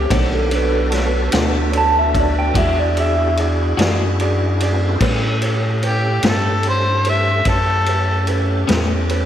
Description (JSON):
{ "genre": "slow blues", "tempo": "49 BPM (dotted quarters)", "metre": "12/8", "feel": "straight", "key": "A mixolydian", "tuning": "A4 = 442 Hz", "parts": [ { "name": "electric guitar through a small old amp", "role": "second line", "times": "0.0-3.4 s", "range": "G4 to A5", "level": "-20 LUFS", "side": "right 2 dB", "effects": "slapback echo" }, { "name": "tonewheel organ", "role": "sustained chords", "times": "0.0-9.3 s", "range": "D#3 to D5", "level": "-24 LUFS", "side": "equal", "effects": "slow rotary speaker, overdrive, chorus vibrato" }, { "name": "warm sub bass", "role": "bass", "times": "0.0-9.3 s", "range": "B1 to A2", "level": "-19 LUFS", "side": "equal", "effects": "none" }, { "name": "clean electric guitar", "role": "accompaniment", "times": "0.1-8.9 s", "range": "A2 to F#4", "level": "-25 LUFS", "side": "left 5 dB", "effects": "harmonic tremolo, slapback echo" }, { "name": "warm grand piano", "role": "accompaniment", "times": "0.1-9.3 s", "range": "C#4 to B5", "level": "-26 LUFS", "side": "right 5 dB", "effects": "slapback echo" }, { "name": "vintage drum kit", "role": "drums", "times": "0.1-9.3 s", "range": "crash cymbal, kick drum, ride cymbal, snare drum", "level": "-22 LUFS", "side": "equal", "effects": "none" }, { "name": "mellow harmonica", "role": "melody", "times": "5.9-8.3 s", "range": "G4 to E5", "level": "-20 LUFS", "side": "left 1 dB", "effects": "slapback echo" } ], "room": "moderate lush hall reverb, RT60 2.7 s", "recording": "big arena sound", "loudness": "-15 LUFS", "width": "side -10 dB against mid", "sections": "0.0-5.0 A section; 5.0-9.3 A section", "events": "clean electric guitar solo 0.0-5.0; harmonica solo 5.0-9.3", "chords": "0.1 Bm7; 2.6 E9; 5.0 A9" }